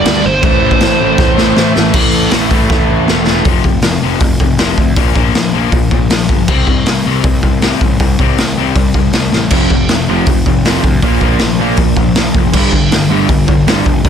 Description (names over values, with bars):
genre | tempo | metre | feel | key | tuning
punk rock | 159 BPM | 4/4 | straight | C major | A4 = 441 Hz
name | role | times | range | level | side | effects
biting lead guitar | melody | 0.0-1.7 s | C5 to D5 | -14 LUFS | right 3 dB | overdrive
cranked stack guitar | riff | 0.0-1.9 s | G2 to A3 | -19 LUFS | equal | overdrive
crunchy overdriven guitar | riff | 0.0-3.5, 9.5-14.1 s | F2 to Bb3 | -16 LUFS | right 15 dB | none
distorted electric guitar | riff | 0.0-14.1 s | F2 to C4 | -16 LUFS | left 15 dB | distortion
fuzz picked electric bass | bass | 0.1-14.1 s | E1 to D2 | -18 LUFS | equal | overdrive
raw garage drum kit | drums | 0.1-14.1 s | crash cymbal, hi-hat, kick drum, snare drum | -12 LUFS | equal | none
room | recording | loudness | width
little or no reverb | dense, heavily limited modern master | -9 LUFS | side -8 dB against mid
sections
0.0-1.9 A section; 1.9-3.5 B section; 3.5-14.1 C section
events
drum fill 1.2-1.9, 2.7-3.5, 9.3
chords
0.4 Am; 1.9 A5; 3.5 F5; 5.0 Bb5; 6.5 C5; 9.5 F5; 11.0 Bb5; 12.5 G5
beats
0.05 | 0.43 0.81 1.19 1.56 | 1.94 2.32 2.70 3.08 | 3.46 3.83 4.21 4.59 | 4.97 5.35 5.73 6.11 | 6.49 6.87 7.24 7.62 | 8.00 8.38 8.76 9.14 | 9.52 9.89 10.27 10.65 | 11.03 11.41 11.78 12.16 | 12.54 12.92 13.29 13.67 | 14.05